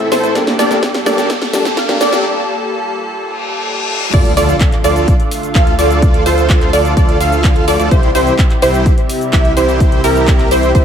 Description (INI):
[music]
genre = EDM, festival progressive house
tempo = 127 BPM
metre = 4/4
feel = straight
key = D minor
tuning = A4 = 436 Hz
[part]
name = dark baby grand piano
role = accompaniment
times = 0.0-2.2 s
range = G2 to A4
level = -20 LUFS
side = left 2 dB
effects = sidechain pumping, dub echo
[part]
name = lush unison pad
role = sustained chords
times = 0.0-10.8 s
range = A2 to A4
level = -21 LUFS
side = equal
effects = chorus, sidechain pumping
[part]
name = wide unison pluck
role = arpeggios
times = 0.0-10.8 s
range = Bb4 to F5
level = -18 LUFS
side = right 1 dB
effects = lush chorus, sidechain pumping, dub echo
[part]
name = dense compressed supersaw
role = riff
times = 0.0-10.8 s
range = Bb3 to F5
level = -16 LUFS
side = right 1 dB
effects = sidechain pumping, dub echo
[part]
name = big-room dance drum kit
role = drums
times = 0.0-10.8 s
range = cabasa, crash cymbal, handclaps, hi-hat, snare drum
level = -21 LUFS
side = equal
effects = none
[part]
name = riser, reverse cymbal and impact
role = sound effects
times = 0.0-6.0 s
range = none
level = -23 LUFS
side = left 2 dB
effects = none
[part]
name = electronic kick drum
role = drums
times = 0.4-10.8 s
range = none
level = -12 LUFS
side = equal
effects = high-pass filter on kick
[part]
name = wide detuned saw bass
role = bass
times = 4.1-10.8 s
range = C2 to D2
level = -17 LUFS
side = equal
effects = chorus, sidechain pumping
[sound]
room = moderate concert hall reverb, RT60 1.9 s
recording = high-pass filter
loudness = -10 LUFS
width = side -8 dB against mid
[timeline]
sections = 0.0-4.1 A section; 4.1-10.8 B section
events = build-up 0.0-4.1; drum fill 0.0-2.2; riser 0.0-2.2; filter sweep 0.0-4.1; break 2.2-4.1; reverse cymbal 3.3-4.1; drop 4.1-10.8; impact 4.1-6.0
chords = 0.4 Gmadd9; 4.1 Dm; 7.9 C